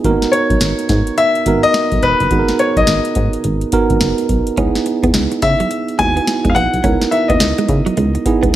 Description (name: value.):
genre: R&B, new jack swing.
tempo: 106 BPM.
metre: 4/4.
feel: swing 62% on 16ths.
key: G# minor.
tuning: A4 = 440 Hz.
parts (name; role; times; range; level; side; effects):
tine electric piano; accompaniment; 0.0-8.6 s; A#3 to A#4; -17 LUFS; right 4 dB; none.
solid FM bass; bass; 0.0-8.5 s; E1 to C#3; -18 LUFS; equal; none.
booming analog drum machine; drums; 0.0-8.6 s; hi-hat, kick drum, snare drum; -19 LUFS; equal; none.
clear baby grand piano; melody; 0.3-8.6 s; B4 to G#5; -16 LUFS; left 3 dB; none.
direct-recorded clean electric guitar; riff; 4.6-8.5 s; F#3 to C#4; -21 LUFS; right 3 dB; wide subtle chorus.
room: light reverb.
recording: none.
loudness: -12 LUFS.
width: side -13 dB against mid.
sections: 0.0-8.6 A section.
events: none.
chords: 0.0 G#m9; 4.6 F#13.